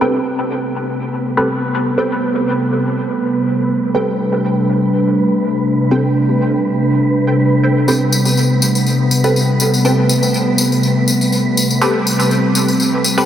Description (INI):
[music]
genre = dub techno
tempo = 122 BPM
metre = 4/4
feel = swing 54% on 16ths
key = A minor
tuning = A4 = 440 Hz
[part]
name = warbly tape-like pad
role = sustained chords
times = 0.0-13.3 s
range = C3 to D4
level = -15 LUFS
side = equal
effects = chorus, built-in reverb
[part]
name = filtered dub chord stab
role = riff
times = 0.0-12.0 s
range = A4 to G5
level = -28 LUFS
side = right 1 dB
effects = phaser, ensemble chorus, cassette tape, dub echo
[part]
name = filtered dub chord stab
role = stabs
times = 0.0-13.3 s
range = C4 to B4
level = -20 LUFS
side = equal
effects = phaser, dub echo
[part]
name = wind-like tuned noise texture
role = texture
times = 0.8-13.3 s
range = B4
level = -25 LUFS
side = right 2 dB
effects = built-in reverb, lush chorus
[part]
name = tambourine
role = percussion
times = 7.9-13.3 s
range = none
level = -20 LUFS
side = left 3 dB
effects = none
[sound]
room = wet huge ambient reverb, RT60 8.6 s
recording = dreamy mix soaked in reverb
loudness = -13 LUFS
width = side -10 dB against mid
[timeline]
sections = 0.0-13.3 A section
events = none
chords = 0.0 Am9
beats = | 0.01 0.50 0.99 1.49 | 1.98 2.47 2.96 3.45 | 3.95 4.44 4.93 5.42 | 5.91 6.41 6.90 7.39 | 7.88 8.37 8.86 9.36 | 9.85 10.34 10.83 11.32 | 11.81 12.31 12.80